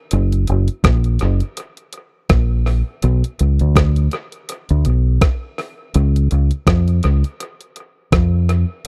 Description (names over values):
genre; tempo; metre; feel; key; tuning
lovers rock reggae; 82 BPM; 4/4; swing 57% on 16ths; unclear; A4 = 440 Hz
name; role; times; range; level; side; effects
deep dub fingered electric bass; bass; 0.1-8.6 s; F#1 to E#2; -17 LUFS; equal; none
gated 80s digital drum machine; drums; 0.1-8.9 s; hi-hat, kick drum, rim click; -19 LUFS; equal; overdrive, tape echo
room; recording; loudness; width
little or no reverb; dry, close 1970s-style studio recording; -17 LUFS; mono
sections
0.0-8.9 A section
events
none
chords
none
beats
| 0.12 0.84 1.57 2.30 | 3.03 3.76 4.49 5.21 | 5.94 6.67 7.40 8.12 | 8.85